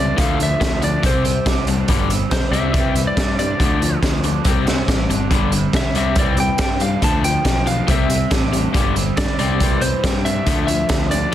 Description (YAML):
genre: indie rock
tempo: 140 BPM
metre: 4/4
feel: straight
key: unclear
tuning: A4 = 440 Hz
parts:
  - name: lightly driven lead guitar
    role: melody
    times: 0.0-11.3 s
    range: C5 to A5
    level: -24 LUFS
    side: equal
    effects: tape echo
  - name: crunchy overdriven guitar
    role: riff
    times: 0.0-11.3 s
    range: G2 to C4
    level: -23 LUFS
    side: left 9 dB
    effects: none
  - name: raw garage guitar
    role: riff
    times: 0.0-11.3 s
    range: C3 to G4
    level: -26 LUFS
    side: right 7 dB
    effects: overdrive, wide subtle chorus, tape echo
  - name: overdriven picked electric bass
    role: bass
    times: 0.0-11.3 s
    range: G1 to G2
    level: -22 LUFS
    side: equal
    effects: none
  - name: raw garage drum kit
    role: drums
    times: 0.2-11.2 s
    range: hi-hat, kick drum, snare drum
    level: -20 LUFS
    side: equal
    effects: none
room: light reverb, studio ambience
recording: dense, heavily limited modern master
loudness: -15 LUFS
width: side -11 dB against mid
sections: 0.0-11.3 A section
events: none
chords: 0.2 Dm; 1.0 Csus2; 1.9 Gsus4; 2.5 Cadd9; 3.6 Dm; 4.4 Csus2; 5.3 Gsus4; 5.9 Cadd9; 7.0 Dm; 7.9 Cadd9; 8.7 Gsus4; 9.4 Cadd9; 10.5 Dm